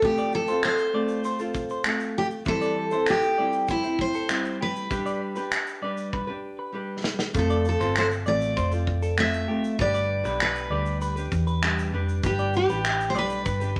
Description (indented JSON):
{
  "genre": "acoustic pop",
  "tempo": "98 BPM",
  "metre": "4/4",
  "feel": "straight",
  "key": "unclear",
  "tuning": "A4 = 440 Hz",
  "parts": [
    { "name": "picked steel-string acoustic guitar", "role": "melody", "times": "0.0-13.8 s", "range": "E4 to E5", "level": "-28 LUFS", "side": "equal", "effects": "none" },
    { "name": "nylon-string guitar", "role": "accompaniment", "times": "0.0-13.8 s", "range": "E3 to C5", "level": "-33 LUFS", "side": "equal", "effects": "none" },
    { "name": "natural country drum kit", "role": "drums", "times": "0.0-13.8 s", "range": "finger snaps, kick drum, shaker, snare drum", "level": "-31 LUFS", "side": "equal", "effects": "none" },
    { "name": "semi-hollow electric guitar", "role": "arpeggios", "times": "0.2-13.6 s", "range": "G4 to D5", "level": "-36 LUFS", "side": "equal", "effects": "none" },
    { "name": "vintage muted fingered electric bass", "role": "bass", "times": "7.3-13.8 s", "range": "F1 to E2", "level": "-30 LUFS", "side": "equal", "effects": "none" }
  ],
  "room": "moderate studio reverb, RT60 0.7 s",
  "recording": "none",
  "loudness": "-25 LUFS",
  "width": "mono",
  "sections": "0.0-7.4 A section; 7.4-13.8 B section",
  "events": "drum fill 6.1-7.4",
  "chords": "0.0 F; 2.5 C/E; 4.9 G; 7.4 F; 9.8 G"
}